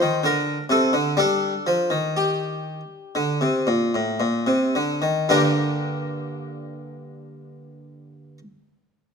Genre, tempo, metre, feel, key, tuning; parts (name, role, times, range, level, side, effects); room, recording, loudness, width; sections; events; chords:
classical, baroque-style suite movement for harpsichord; 54-68 BPM; 4/4; rubato; G minor; A4 = 441 Hz
harpsichord; solo; 0.0-8.4 s; G2 to C5; -20 LUFS; equal
light reverb; close, detailed microphones; -20 LUFS; side -5 dB against mid
0.0-5.3 A section; 5.3-9.1 B section
slowing down 0.0-5.3
0.2 D5; 1.2 Gm